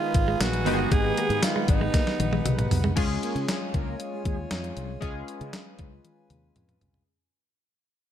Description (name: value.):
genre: 1980s-style pop.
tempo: 117 BPM.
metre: 4/4.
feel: straight.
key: unclear.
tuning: A4 = 438 Hz.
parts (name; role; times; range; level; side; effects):
raspy alto saxophone; melody; 0.0-2.7 s; D#4 to G#4; -29 LUFS; right 4 dB; ping-pong delay.
chorused retro synth keys; accompaniment; 0.0-7.1 s; D#3 to G#4; -31 LUFS; left 1 dB; none.
pedal harmonium; sustained chords; 0.0-7.1 s; D#4 to G#5; -37 LUFS; left 1 dB; none.
fretless electric bass; bass; 0.1-7.0 s; G1 to C#3; -30 LUFS; left 1 dB; none.
clean 12-bit digital drum machine; drums; 0.1-7.1 s; crash cymbal, hi-hat, kick drum, snare drum, tambourine, toms; -26 LUFS; left 1 dB; overdrive, gated reverb.
direct-recorded clean electric guitar; riff; 0.2-2.9 s; F#3 to A#3; -34 LUFS; right 5 dB; lush chorus.
mellow synth brass; stabs; 3.2-4.4 s; G#3 to A#4; -39 LUFS; right 2 dB; chorus.
room: light reverb.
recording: none.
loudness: -23 LUFS.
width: side -10 dB against mid.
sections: 0.0-3.0 A section; 3.0-7.1 B section.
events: drum fill 1.9-3.0, 6.0-7.1; fade-out 3.0-7.1.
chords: 0.0 G#m; 3.0 C#.